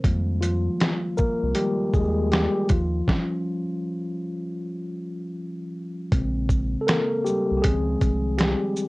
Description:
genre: lo-fi hip hop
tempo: 79 BPM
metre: 4/4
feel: swing 66% on 16ths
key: unclear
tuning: A4 = 440 Hz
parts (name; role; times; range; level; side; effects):
- mellow tine electric piano; accompaniment; 0.0-8.9 s; Db3 to Bb4; -25 LUFS; left 1 dB; medium stereo tremolo, cassette tape, plate reverb
- round analog bass; bass; 0.0-8.6 s; Bb1 to F2; -26 LUFS; equal; none
- lo-fi sampler-style drum kit; drums; 0.0-8.9 s; hi-hat, kick drum, shaker, snare drum; -23 LUFS; equal; none
- finger snaps; percussion; 6.9-8.6 s; none; -37 LUFS; right 6 dB; none
room: moderate studio reverb, RT60 0.6 s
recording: worn, warbling old tape, cassette tape, warbly pitch drift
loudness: -22 LUFS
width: side -22 dB against mid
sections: 0.0-6.1 A section; 6.1-8.9 B section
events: tine electric piano solo 0.0-6.1, 6.1-8.9; stop 3.1-6.1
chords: 0.0 Fm11; 2.7 Eb9 (rootless); 6.1 Bbm9; 7.6 Dbmaj9

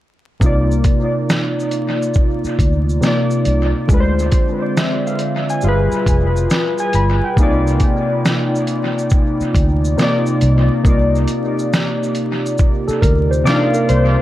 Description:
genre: lo-fi hip hop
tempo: 69 BPM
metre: 4/4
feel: swing 66% on 16ths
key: C minor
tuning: A4 = 436 Hz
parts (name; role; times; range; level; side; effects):
- warm analog keys; accompaniment; 0.4-14.2 s; C3 to B5; -17 LUFS; left 1 dB; chorus, cassette tape, low-pass filter, dub echo
- warbly tape-like pad; sustained chords; 0.4-14.2 s; B2 to D5; -26 LUFS; equal; chorus, built-in reverb, low-pass filter
- vintage muted fingered electric bass; bass; 0.4-14.2 s; F1 to D2; -16 LUFS; equal; none
- lo-fi sampler-style drum kit; drums; 0.4-14.2 s; hi-hat, kick drum, shaker, snare drum; -18 LUFS; equal; dub echo
- tine electric piano; second line; 12.9-14.2 s; A4 to D5; -21 LUFS; right 1 dB; medium stereo tremolo, low-pass filter, dub echo
room: light reverb, digital ambience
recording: echo-heavy mix, vinyl crackle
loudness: -14 LUFS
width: side -14 dB against mid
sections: 0.4-14.2 A section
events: none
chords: 0.4 Cm11; 3.9 Dm7b5; 5.6 G7b9; 7.4 Cm11

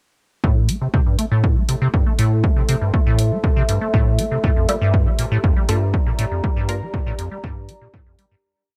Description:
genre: acid house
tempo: 120 BPM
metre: 4/4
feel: straight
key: A minor pentatonic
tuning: A4 = 441 Hz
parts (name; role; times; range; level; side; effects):
- acid bass, square; riff; 0.4-8.4 s; F2 to A3; -22 LUFS; equal; tube saturation, lush chorus, sidechain pumping
- electronic kick drum; drums; 0.4-8.0 s; none; -21 LUFS; equal; none
- deep dark ambient pad; texture; 1.7-8.4 s; G4 to C6; -30 LUFS; equal; chorus, built-in reverb, sidechain pumping
- electronic hi-hat; drums; 0.7-8.3 s; none; -31 LUFS; equal; none
- filtered dub chord stab; stabs; 4.7-6.8 s; Bb3 to Bb4; -29 LUFS; equal; phaser, analog chorus, digital delay
room: light reverb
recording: none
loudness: -19 LUFS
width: mono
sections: 0.4-8.4 groove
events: fade-out 5.8-8.4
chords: 0.4 Am; 4.4 Gm7

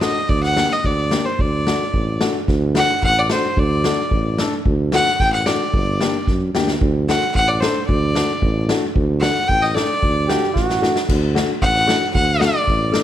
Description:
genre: klezmer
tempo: 112 BPM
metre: 2/4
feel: straight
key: D phrygian dominant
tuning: A4 = 440 Hz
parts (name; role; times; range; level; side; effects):
- rich violin; melody; 0.0-12.9 s; C5 to G5; -19 LUFS; left 1 dB; none
- warm upright piano; accompaniment; 0.0-13.0 s; A3 to A4; -24 LUFS; left 4 dB; none
- mellow tuba; bass; 0.0-13.0 s; G1 to F#2; -21 LUFS; right 1 dB; none
- street-band drum kit; drums; 0.0-13.0 s; crash cymbal, kick drum, snare drum; -22 LUFS; equal; none
- clear trombone; second line; 10.3-11.0 s; F#4 to G4; -21 LUFS; right 5 dB; none
room: light reverb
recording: dark, warm production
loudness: -16 LUFS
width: side -11 dB against mid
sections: 0.0-2.5 A section; 2.5-11.1 B section; 11.1-13.0 B section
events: speeding up 0.0-13.0; drum fill 10.6-11.1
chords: 0.3 Gm/D; 1.4 D; 5.7 Gm; 6.8 D

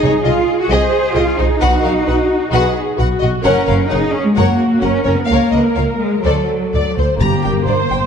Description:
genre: cinematic, heroic adventure film score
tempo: 130 BPM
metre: 4/4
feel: straight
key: unclear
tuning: A4 = 440 Hz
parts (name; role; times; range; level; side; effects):
- rich symphonic violin section; melody; 0.0-8.0 s; C5 to Bb5; -23 LUFS; left 4 dB; none
- warm symphonic violin section; second line; 0.0-8.1 s; Bb3 to Eb5; -21 LUFS; left 4 dB; none
- rich symphonic viola section; accompaniment; 0.0-8.1 s; F#4 to C5; -20 LUFS; equal; none
- rich symphonic cello section; bass; 0.0-8.0 s; G2 to Ab4; -17 LUFS; right 1 dB; none
- rich symphonic double bass section; bass; 0.0-8.0 s; Gb1 to D2; -18 LUFS; right 2 dB; none
- timpani; percussion; 7.2-7.9 s; G2; -19 LUFS; left 3 dB; none
room: moderate scoring stage reverb, RT60 2.1 s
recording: dark, warm production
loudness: -13 LUFS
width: side -7 dB against mid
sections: 0.0-7.2 A section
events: none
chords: 0.0 Ab/C; 1.6 B; 3.5 Gb; 5.3 Db6; 6.2 D7; 7.2 Gm

